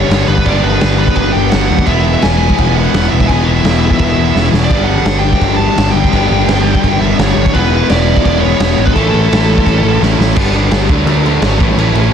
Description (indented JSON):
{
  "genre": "punk rock",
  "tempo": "170 BPM",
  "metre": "4/4",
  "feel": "straight",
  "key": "unclear",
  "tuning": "A4 = 441 Hz",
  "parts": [
    { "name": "biting lead guitar", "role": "melody", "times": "0.0-10.0 s", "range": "A4 to A5", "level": "-18 LUFS", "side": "equal", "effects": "overdrive, tape echo" },
    { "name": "distorted electric guitar", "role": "riff", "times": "0.0-12.1 s", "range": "E2 to D4", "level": "-17 LUFS", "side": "left 14 dB", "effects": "distortion" },
    { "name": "sludgy distorted guitar", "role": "riff", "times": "0.0-10.4 s", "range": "G2 to E4", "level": "-19 LUFS", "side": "right 1 dB", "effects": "overdrive" },
    { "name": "tight distorted guitar", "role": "riff", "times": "0.0-12.1 s", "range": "G2 to E4", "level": "-19 LUFS", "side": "right 17 dB", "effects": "distortion" },
    { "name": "growling picked electric bass", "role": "bass", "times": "0.0-12.1 s", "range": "E1 to D#2", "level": "-15 LUFS", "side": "right 1 dB", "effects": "overdrive" },
    { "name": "raw garage drum kit", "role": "drums", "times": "0.1-12.0 s", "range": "crash cymbal, kick drum, snare drum", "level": "-15 LUFS", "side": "right 1 dB", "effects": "none" }
  ],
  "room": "little or no reverb",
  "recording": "dense, heavily limited modern master",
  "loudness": "-9 LUFS",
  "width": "side -8 dB against mid",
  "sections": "0.0-10.4 A section; 10.4-12.1 B section",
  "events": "drum fill 4.4-4.7, 10.0-10.4",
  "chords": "0.0 G; 1.9 E; 4.7 G; 7.5 E; 9.0 A; 10.4 G; 10.9 D; 11.6 A"
}